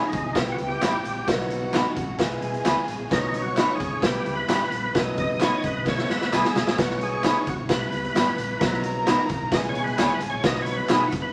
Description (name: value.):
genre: uptempo 1960s-style soul.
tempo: 131 BPM.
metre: 4/4.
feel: straight.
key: B major.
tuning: A4 = 440 Hz.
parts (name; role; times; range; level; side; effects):
percussive tonewheel organ; melody; 0.0-11.3 s; D#4 to D#5; -32 LUFS; equal; overdrive, fast rotary speaker.
rich studio violin section; second line; 0.0-11.3 s; F#4 to E6; -35 LUFS; equal; none.
vintage muted fingered electric bass; bass; 0.1-11.3 s; F#1 to B2; -38 LUFS; equal; none.
raw garage drum kit; drums; 0.1-11.2 s; hi-hat, kick drum, snare drum; -28 LUFS; equal; none.
tambourine and handclaps; percussion; 0.1-11.2 s; none; -39 LUFS; equal; none.
warm upright piano; accompaniment; 0.4-11.0 s; F#3 to B4; -33 LUFS; equal; none.
congas; percussion; 0.4-11.0 s; none; -43 LUFS; equal; none.
electric guitar through a small old amp; stabs; 0.8-11.0 s; B3 to B4; -27 LUFS; equal; none.
room: wet studio reverb, RT60 0.5 s.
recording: vinyl crackle.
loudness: -24 LUFS.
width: mono.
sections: 0.0-11.3 A section.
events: tonewheel organ solo 0.0-11.3; drum fill 5.9-6.8.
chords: 0.4 Em/B; 1.3 B; 2.2 E/B; 3.1 B; 4.0 Em/B; 4.9 B; 5.9 E; 6.8 B; 7.7 Em/B; 8.6 B; 9.5 E/B; 10.4 B.